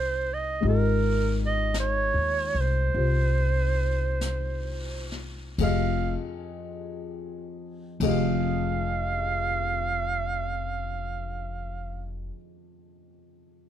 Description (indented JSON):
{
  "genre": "jazz ballad",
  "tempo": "42-56 BPM",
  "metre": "4/4",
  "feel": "swing 69% on 8ths",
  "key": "F minor",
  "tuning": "A4 = 440 Hz",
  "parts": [
    { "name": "warm clarinet", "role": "melody", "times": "0.0-12.1 s", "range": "Bb4 to F5", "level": "-28 LUFS", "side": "right 4 dB", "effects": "none" },
    { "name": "dark upright piano", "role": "accompaniment", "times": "0.0-13.7 s", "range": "F2 to Eb5", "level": "-32 LUFS", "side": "left 4 dB", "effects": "none" },
    { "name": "upright bass", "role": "bass", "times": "0.0-12.3 s", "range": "F1 to Eb2", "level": "-28 LUFS", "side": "left 1 dB", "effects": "none" },
    { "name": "jazz brush drum kit", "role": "drums", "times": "0.6-8.3 s", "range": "brushed snare drum, hi-hat, kick drum, ride cymbal, snare drum", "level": "-38 LUFS", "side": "left 3 dB", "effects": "none" }
  ],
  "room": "little or no reverb",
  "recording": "none",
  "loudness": "-24 LUFS",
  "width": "side -10 dB against mid",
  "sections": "0.0-5.6 A section; 5.6-11.3 B section",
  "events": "slowing down 0.0-5.6",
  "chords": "0.0 Fm9"
}